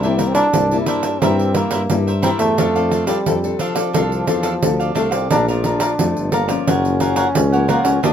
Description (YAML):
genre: samba and choro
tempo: 88 BPM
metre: 4/4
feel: straight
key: F major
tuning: A4 = 443 Hz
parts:
  - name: mellow trombone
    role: melody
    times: 0.0-8.1 s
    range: F3 to E4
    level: -20 LUFS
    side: equal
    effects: none
  - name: cavaquinho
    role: accompaniment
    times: 0.0-8.1 s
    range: D4 to Bb5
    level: -22 LUFS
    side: right 1 dB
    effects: none
  - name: nylon-string guitar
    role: accompaniment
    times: 0.0-8.1 s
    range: F2 to A4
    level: -24 LUFS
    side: left 8 dB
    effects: none
  - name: mellow tuba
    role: bass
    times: 0.0-8.1 s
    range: Gb1 to G2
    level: -21 LUFS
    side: equal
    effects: none
  - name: pandeiro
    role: percussion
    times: 0.0-8.1 s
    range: none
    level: -22 LUFS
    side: right 3 dB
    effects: none
room: light reverb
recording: minimal, uncompressed stereo recording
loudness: -15 LUFS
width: side -9 dB against mid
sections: 0.0-5.3 A section; 5.3-8.1 B section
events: none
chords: 0.0 C7; 2.6 F6; 5.3 Bbmaj7; 6.7 Gbmaj7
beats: 0.54 1.22 1.90 | 2.58 3.26 3.94 4.63 | 5.31 5.99 6.67 7.35 | 8.03